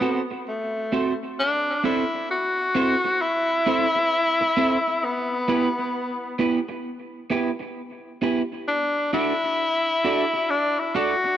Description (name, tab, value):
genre	reggae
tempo	66 BPM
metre	4/4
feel	swing 64% on 16ths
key	unclear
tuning	A4 = 440 Hz
part	breathy tenor saxophone	melody	0.0-11.4 s	A3 to F#4	-22 LUFS	left 2 dB	tape echo
part	electric guitar at the edge of break-up	accompaniment	0.0-11.3 s	B3 to D5	-26 LUFS	right 3 dB	wide subtle chorus, tape echo
room	moderate plate reverb, RT60 3.2 s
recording	echo-heavy mix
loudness	-21 LUFS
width	side -11 dB against mid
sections	0.0-1.4 A section; 1.4-11.4 B section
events	none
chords	0.0 F#dim; 1.4 Am; 5.0 Em; 8.7 D